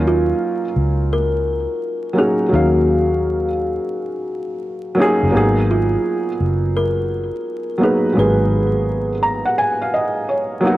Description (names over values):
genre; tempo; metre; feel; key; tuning
lo-fi hip hop; 85 BPM; 4/4; swing 65% on 16ths; Eb minor; A4 = 440 Hz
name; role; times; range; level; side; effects
felt-muted upright piano; accompaniment; 0.0-10.8 s; Gb3 to Bb5; -19 LUFS; equal; cassette tape, low-pass filter
vintage muted fingered electric bass; bass; 0.0-9.4 s; Gb1 to Eb2; -20 LUFS; equal; none
kalimba; melody; 0.1-10.6 s; F4 to Cb5; -21 LUFS; equal; low-pass filter
room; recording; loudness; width
light reverb, small room ambience; home recording on cassette, vinyl crackle; -16 LUFS; side -16 dB against mid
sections
0.0-10.8 A section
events
felt piano fill 8.9-10.8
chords
0.0 Ebm9; 5.3 Abm9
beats
0.40 1.10 1.81 | 2.52 3.22 3.93 4.63 | 5.34 6.04 6.75 7.46 | 8.16 8.87 9.57 10.28